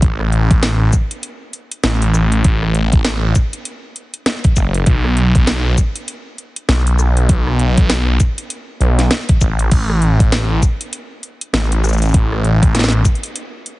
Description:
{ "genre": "glitch hop", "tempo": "99 BPM", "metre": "4/4", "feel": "swing 60% on 16ths", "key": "unclear", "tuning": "A4 = 436 Hz", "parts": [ { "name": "phased detuned saw bass", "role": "bass", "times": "0.0-13.0 s", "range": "F#1 to B1", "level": "-14 LUFS", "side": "equal", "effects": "phaser" }, { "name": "drum and bass drum kit", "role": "drums", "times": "0.0-13.8 s", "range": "crash cymbal, hi-hat, rim click, shaker, snare drum", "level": "-21 LUFS", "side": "equal", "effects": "none" }, { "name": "electronic kick drum", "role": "drums", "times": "0.0-13.2 s", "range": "none", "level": "-13 LUFS", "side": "equal", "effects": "none" } ], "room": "little or no reverb", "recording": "heavily compressed radio sound, multiband compression, nothing above 10.5 kHz", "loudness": "-12 LUFS", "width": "side -19 dB against mid", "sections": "0.0-13.8 A section", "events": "none", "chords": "none" }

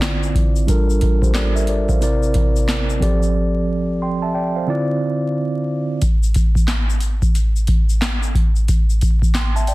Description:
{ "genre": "hip hop, boom-bap hip-hop", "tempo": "90 BPM", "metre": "4/4", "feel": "swing 63% on 16ths", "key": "unclear", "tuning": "A4 = 438 Hz", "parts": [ { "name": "mellow tine electric piano", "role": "accompaniment", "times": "0.0-9.7 s", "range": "C3 to C6", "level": "-20 LUFS", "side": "right 1 dB", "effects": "slow stereo tremolo, high-pass filter, low-pass filter" }, { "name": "booming analog drum machine", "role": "drums", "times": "0.0-9.7 s", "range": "handclaps, hi-hat, kick drum, snare drum", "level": "-16 LUFS", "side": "equal", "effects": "none" }, { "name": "tube shaker", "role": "percussion", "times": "0.0-9.7 s", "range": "none", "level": "-34 LUFS", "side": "left 9 dB", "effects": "none" } ], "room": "little or no reverb", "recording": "dense, heavily limited modern master, vinyl crackle", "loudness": "-16 LUFS", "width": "side -20 dB against mid", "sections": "0.0-6.0 A section; 6.0-9.7 B section", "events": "break 3.4-6.0", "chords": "0.0 Dm7; 0.7 Gm7; 2.0 C7; 3.0 F6; 4.7 Dm7; 6.0 N.C." }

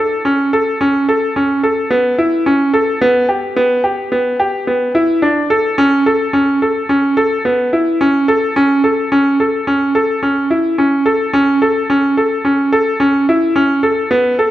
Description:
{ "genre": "contemporary instrumental, contemporary", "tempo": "108 BPM", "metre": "5/4", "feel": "straight", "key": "A mixolydian, A major from 11.3 s", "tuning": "A4 = 440 Hz", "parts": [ { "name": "bright concert grand piano", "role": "solo", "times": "0.0-14.5 s", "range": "B3 to A4", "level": "-12 LUFS", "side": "equal", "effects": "none" } ], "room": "wet concert hall reverb, RT60 2.1 s", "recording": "none", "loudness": "-12 LUFS", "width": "side -13 dB against mid", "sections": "0.0-11.3 A section; 11.3-14.5 B section", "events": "none", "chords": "none" }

